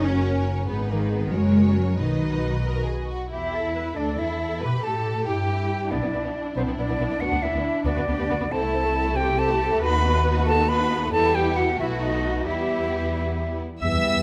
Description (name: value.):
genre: classical, dramatic, fast romantic movement for symphony orchestra.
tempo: 92 BPM (dotted quarters).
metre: 6/8.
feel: straight.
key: B major, E minor from 3.3 s.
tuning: A4 = 440 Hz.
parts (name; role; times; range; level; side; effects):
warm symphonic violin section; melody; 0.0-14.2 s; D4 to E6; -36 LUFS; equal; none.
warm symphonic violin section; second line; 0.0-14.2 s; G3 to E5; -34 LUFS; equal; none.
warm studio viola section; accompaniment; 0.0-13.6 s; C4 to B4; -32 LUFS; equal; none.
warm symphonic cello section; bass; 0.0-14.2 s; D#3 to B4; -31 LUFS; equal; none.
warm symphonic double bass section; bass; 0.0-14.2 s; F#1 to B2; -29 LUFS; equal; none.
silver concert flute; second line; 3.3-14.2 s; C5 to B5; -29 LUFS; equal; none.
bright oboe; second line; 13.8-14.2 s; E5; -28 LUFS; equal; none.
dark French horn section; sustained chords; 13.8-14.2 s; G3 to B3; -29 LUFS; equal; none.
room: light reverb.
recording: close, detailed microphones.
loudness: -24 LUFS.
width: mono.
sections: 0.0-3.3 A section; 3.3-13.8 B section.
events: none.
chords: 0.0 F#; 0.7 G#m; 1.3 F#; 2.0 B; 3.3 Em; 5.9 Bm; 7.2 Bm/D; 8.5 Am/C; 9.8 B7/D#; 11.1 Em; 11.8 B7; 12.5 Em.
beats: 0.05 | 0.68 1.33 | 1.98 2.65 | 3.31 3.97 | 4.62 5.27 | 5.92 6.57 | 7.21 7.86 | 8.52 9.17 | 9.82 10.47 | 11.13 11.79 | 12.46 13.14 | 13.82.